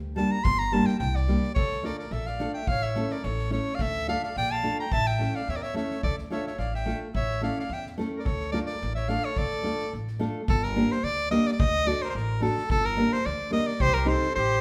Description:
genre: balkan folk, Balkan wedding band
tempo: 108 BPM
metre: 2/4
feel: straight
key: D harmonic minor, G harmonic minor from 10.5 s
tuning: A4 = 440 Hz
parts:
  - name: upright bass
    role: bass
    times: 0.0-14.6 s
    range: G1 to E2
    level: -34 LUFS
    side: equal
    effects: none
  - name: edgy soprano saxophone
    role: melody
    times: 0.2-14.6 s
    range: A4 to C6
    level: -31 LUFS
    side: equal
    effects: none
  - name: nylon-string guitar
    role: accompaniment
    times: 0.2-14.3 s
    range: G3 to C5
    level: -31 LUFS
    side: equal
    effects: none
  - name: soft-mallet drum kit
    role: percussion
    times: 0.2-14.6 s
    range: kick drum, snare drum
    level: -34 LUFS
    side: equal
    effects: none
  - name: accordion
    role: second line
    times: 1.6-9.9, 13.8-14.6 s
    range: G4 to G5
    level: -38 LUFS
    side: equal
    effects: none
room: moderate recital hall reverb, RT60 1.5 s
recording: none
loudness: -27 LUFS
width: mono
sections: 0.0-1.6 A section; 1.6-10.5 B section; 10.5-14.6 C section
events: soprano saxophone solo 0.0-1.6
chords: 0.0 Gm; 1.6 Dm; 2.7 A; 3.8 Dm; 4.9 A; 6.0 Dm; 7.1 A; 8.3 Dm; 10.5 Gm; 11.6 D; 12.7 Gm; 13.8 Cm

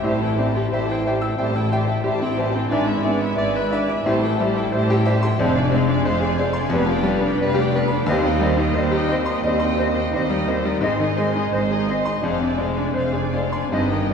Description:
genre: classical, romantic movement for piano and orchestra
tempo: 76-92 BPM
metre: 4/4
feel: rubato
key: C minor from 5.4 s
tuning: A4 = 436 Hz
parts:
  - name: bright grand piano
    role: melody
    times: 0.0-14.1 s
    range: Eb2 to E6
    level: -23 LUFS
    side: left 1 dB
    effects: none
  - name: muted studio violin section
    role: melody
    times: 0.0-14.1 s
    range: Eb5 to C6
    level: -32 LUFS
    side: left 3 dB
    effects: none
  - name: muted studio violin section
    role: second line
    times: 0.0-14.1 s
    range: A4 to E5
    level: -30 LUFS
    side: left 1 dB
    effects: none
  - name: warm clarinet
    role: second line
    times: 0.0-14.1 s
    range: B4 to D5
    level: -31 LUFS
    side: left 2 dB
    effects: none
  - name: muted studio viola section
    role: accompaniment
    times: 0.0-14.1 s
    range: B3 to G4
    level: -29 LUFS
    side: right 1 dB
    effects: none
  - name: warm bassoon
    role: accompaniment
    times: 0.0-14.1 s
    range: E3 to Ab3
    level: -31 LUFS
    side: right 3 dB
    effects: none
  - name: mellow French horn section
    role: sustained chords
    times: 0.0-14.0 s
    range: E3 to G4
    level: -30 LUFS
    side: left 2 dB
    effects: none
  - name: muted studio cello section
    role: bass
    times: 0.0-14.1 s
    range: Eb2 to A2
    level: -27 LUFS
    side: right 2 dB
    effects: none
  - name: muted studio double bass section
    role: bass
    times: 0.0-14.1 s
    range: F1 to Eb2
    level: -26 LUFS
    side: equal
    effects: none
  - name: silver concert flute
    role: second line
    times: 0.1-14.1 s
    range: D5 to E5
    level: -31 LUFS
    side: left 1 dB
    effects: none
room: wet scoring stage reverb, RT60 2.1 s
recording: heard from further back in the room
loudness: -18 LUFS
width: side -6 dB against mid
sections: 0.0-14.1 A section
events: none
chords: 0.0 Am7; 2.7 E7/G#; 4.1 Am7; 5.4 Dm7b5/F; 6.7 G7/F; 8.1 Cm/Eb; 10.8 Ab; 12.2 Dm7b5/F

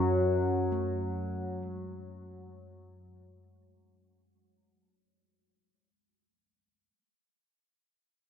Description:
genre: dark ambient drone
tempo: free time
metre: none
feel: none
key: F# minor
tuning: A4 = 438 Hz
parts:
  - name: analog drone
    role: drone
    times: 0.0-3.0 s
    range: F#2 to F#3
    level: -30 LUFS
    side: left 1 dB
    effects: chorus
  - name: gamelan-type bossed gongs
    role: arpeggios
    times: 0.7-7.1 s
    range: G#3 to A3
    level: -46 LUFS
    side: right 1 dB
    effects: none
room: wet cathedral reverb, RT60 5.2 s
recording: none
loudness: -29 LUFS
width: side -8 dB against mid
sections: 0.0-3.0 A section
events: fade-out 0.0-3.0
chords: 0.0 F#5

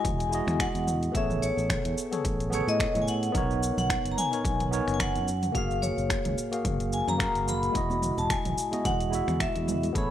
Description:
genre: sunset chillout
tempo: 109 BPM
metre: 4/4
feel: swing 55% on 16ths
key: E major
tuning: A4 = 440 Hz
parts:
  - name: vibraphone with hard mallets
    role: melody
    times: 0.0-10.1 s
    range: C#5 to B5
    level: -31 LUFS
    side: equal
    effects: tape echo
  - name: tine electric piano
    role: accompaniment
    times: 0.0-10.1 s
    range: G#3 to E#5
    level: -31 LUFS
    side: equal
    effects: medium stereo tremolo, auto-pan
  - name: fingered electric bass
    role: bass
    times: 0.0-10.1 s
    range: E1 to A2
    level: -31 LUFS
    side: equal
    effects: none
  - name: deep house drum kit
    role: drums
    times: 0.0-10.1 s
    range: cabasa, finger snaps, hi-hat, toms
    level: -34 LUFS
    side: right 1 dB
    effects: overdrive, small room ambience
  - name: electronic kick drum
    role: drums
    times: 0.0-10.1 s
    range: none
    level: -33 LUFS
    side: equal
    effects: overdrive, small room ambience
  - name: congas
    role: percussion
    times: 7.8-9.9 s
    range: none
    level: -38 LUFS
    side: right 2 dB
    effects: none
room: light reverb, digital ambience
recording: dry, gritty hardware recording, faint mains hum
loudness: -25 LUFS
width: side -11 dB against mid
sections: 0.0-10.1 A section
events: none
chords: 0.0 Emaj9; 1.1 Amaj9; 3.3 Bmaj9; 5.3 F#maj9; 7.8 Emaj9

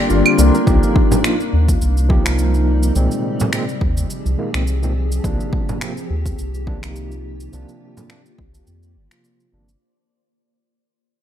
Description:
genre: organic downtempo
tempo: 105 BPM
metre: 4/4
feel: swing 55% on 16ths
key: C minor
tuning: A4 = 439 Hz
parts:
  - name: overdriven tine electric piano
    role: accompaniment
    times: 0.0-9.7 s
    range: Bb2 to Bb4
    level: -23 LUFS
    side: right 1 dB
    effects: fast tremolo, sidechain pumping, low-pass filter, digital delay
  - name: granular cloud pad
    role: sustained chords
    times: 0.0-9.8 s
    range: C3 to D5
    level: -24 LUFS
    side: left 3 dB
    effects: built-in reverb, sidechain pumping
  - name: santur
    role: arpeggios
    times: 0.0-4.7 s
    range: Bb3 to C5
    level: -26 LUFS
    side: left 4 dB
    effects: vintage 12-bit sampler grit, digital delay
  - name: round analog bass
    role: bass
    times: 0.1-9.8 s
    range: G1 to F2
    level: -18 LUFS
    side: equal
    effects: sidechain pumping
  - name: electronic cabasa, claves and finger snaps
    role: drums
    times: 0.1-9.8 s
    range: none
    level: -23 LUFS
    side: right 2 dB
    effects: overdrive, studio reverb
  - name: electronic kick drum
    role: drums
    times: 0.7-8.5 s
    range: none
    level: -19 LUFS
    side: equal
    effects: overdrive, studio reverb
  - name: frame drum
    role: percussion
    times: 1.1-8.1 s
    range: none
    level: -24 LUFS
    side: right 1 dB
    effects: none
room: light reverb, studio reverb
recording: none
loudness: -15 LUFS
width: side -10 dB against mid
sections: 0.7-9.8 A section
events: fade-out 0.7-9.8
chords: 0.0 Bb; 0.7 Cm7; 3.0 Fmadd9/C; 5.2 Ebmaj7/C; 7.5 Bb/C

